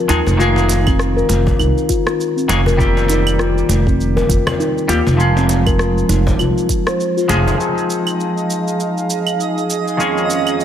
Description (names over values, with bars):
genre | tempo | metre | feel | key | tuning
organic downtempo | 100 BPM | 4/4 | swing 58% on 16ths | F minor | A4 = 444 Hz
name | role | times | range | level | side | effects
semi-hollow electric guitar | accompaniment | 0.0-10.6 s | F2 to Ab4 | -20 LUFS | equal | harmonic tremolo, sidechain pumping, low-pass filter, digital delay
steel tongue drum | arpeggios | 0.1-7.5 s | C4 to C5 | -19 LUFS | left 4 dB | digital delay
upright bass | bass | 0.1-7.5 s | F1 to Eb2 | -16 LUFS | right 1 dB | none
afro-pop drum kit | drums | 0.1-10.6 s | claves, hi-hat, rim click, shaker | -23 LUFS | right 2 dB | none
cajon | percussion | 0.3-7.6 s | none | -26 LUFS | left 2 dB | none
electronic kick drum | drums | 0.9-6.8 s | none | -18 LUFS | right 1 dB | none
warm analog pad | sustained chords | 7.6-10.6 s | F3 to F5 | -21 LUFS | right 4 dB | chorus, tremolo, sidechain pumping
twinkling granular texture | texture | 8.0-10.6 s | Eb5 | -25 LUFS | right 2 dB | built-in reverb
room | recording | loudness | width
light reverb | none | -13 LUFS | side -10 dB against mid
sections
0.0-7.6 A section; 7.6-10.6 B section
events
filter sweep on clean electric guitar 0.0-7.6, 7.6-10.6; kick drops out 7.0-7.6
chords
0.4 Ebsus4/F; 2.8 Cm7/F; 5.2 Bb7(no3)/F; 7.6 Fm7; 10.0 Eb7sus4/F